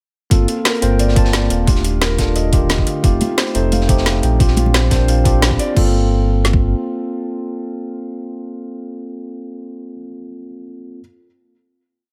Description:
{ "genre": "liquid drum and bass", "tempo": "176 BPM", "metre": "4/4", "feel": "straight", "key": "G minor", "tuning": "A4 = 441 Hz", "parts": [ { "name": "bell-like tine electric piano", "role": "accompaniment", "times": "0.3-11.0 s", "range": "D3 to A5", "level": "-24 LUFS", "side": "equal", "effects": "dub echo" }, { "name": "felt-muted upright piano", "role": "arpeggios", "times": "0.3-5.9 s", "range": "F4 to G5", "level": "-28 LUFS", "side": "equal", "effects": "dub echo" }, { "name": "sub bass with octave", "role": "bass", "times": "0.3-6.7 s", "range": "Eb1 to Bb1", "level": "-19 LUFS", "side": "equal", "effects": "none" }, { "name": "crunchy breakbeat drum kit", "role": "drums", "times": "0.3-5.7 s", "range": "hi-hat, snare drum", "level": "-29 LUFS", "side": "equal", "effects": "high-pass filter on hats, studio reverb, high-pass filter on snare, high-pass filter on room" }, { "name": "garage drum kit", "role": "drums", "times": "0.3-6.6 s", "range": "kick drum, snare drum", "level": "-18 LUFS", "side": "equal", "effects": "overdrive, studio reverb" }, { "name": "garage drum kit", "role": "drums", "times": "0.3-5.8 s", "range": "crash cymbal, hi-hat, snare drum", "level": "-23 LUFS", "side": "equal", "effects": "overdrive, studio reverb" }, { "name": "congas", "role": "percussion", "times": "3.2-4.7 s", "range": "none", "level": "-25 LUFS", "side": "equal", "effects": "none" } ], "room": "small room ambience", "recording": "none", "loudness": "-16 LUFS", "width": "mono", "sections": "0.3-5.8 drop; 5.8-8.5 final chord", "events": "drop 0.3-5.8; band accent 5.4", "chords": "0.3 Gm11; 1.7 Ebmaj9#11; 3.0 F9; 4.4 Bb69; 5.8 Gm11", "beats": "| 0.31 0.65 0.99 1.33 | 1.68 2.02 2.36 2.70 | 3.04 3.38 3.72 4.06 | 4.40 4.74 5.08 5.42 | 5.77 6.11 6.45 6.79 | 7.13 7.47 7.81 8.15" }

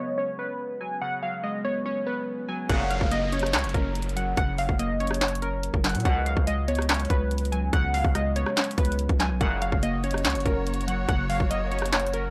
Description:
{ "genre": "hip hop, trap", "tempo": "143 BPM", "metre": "4/4", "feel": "half-time", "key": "F# major", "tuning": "A4 = 440 Hz", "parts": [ { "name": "glassy wavetable pluck", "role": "melody", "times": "0.0-12.3 s", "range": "A#4 to G#5", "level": "-32 LUFS", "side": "equal", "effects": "chorus, low-pass filter, tape echo" }, { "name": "glassy digital keys", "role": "accompaniment", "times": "0.0-12.3 s", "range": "C#3 to C#5", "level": "-35 LUFS", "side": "equal", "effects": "chorus, low-pass filter" }, { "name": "warm brass ensemble", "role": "stabs", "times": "2.7-3.1, 6.1-6.5, 9.4-9.8 s", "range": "F#2 to C#3", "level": "-34 LUFS", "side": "equal", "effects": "none" }, { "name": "long sustained 808-style bass", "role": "bass", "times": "2.7-12.3 s", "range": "F#1 to A#2", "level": "-31 LUFS", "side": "equal", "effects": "none" }, { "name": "trap drum kit", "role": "drums", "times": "2.7-12.2 s", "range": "handclaps, hi-hat, kick drum, rim click, snare drum", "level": "-28 LUFS", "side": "equal", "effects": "none" }, { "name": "downlifter", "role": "sound effects", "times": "2.7-6.1 s", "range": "none", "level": "-42 LUFS", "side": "equal", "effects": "none" }, { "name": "warm studio string section", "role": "sustained chords", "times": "9.4-12.3 s", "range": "A#3 to C#5", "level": "-38 LUFS", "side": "equal", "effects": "none" } ], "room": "little or no reverb", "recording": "dry, gritty hardware recording", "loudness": "-26 LUFS", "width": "mono", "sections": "0.0-2.7 A section; 2.7-12.3 B section", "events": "filter sweep 0.0-2.7", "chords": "0.0 C#7sus4; 2.7 F#; 6.1 C#7sus4; 9.4 F#", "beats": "0.18 0.60 | 1.02 1.44 1.86 2.27 | 2.69 3.12 3.53 3.95 | 4.37 4.79 5.21 5.63 | 6.05 6.47 6.89 7.31 | 7.73 8.15 8.57 8.99 | 9.41 9.83 10.25 10.67 | 11.09 11.51 11.93" }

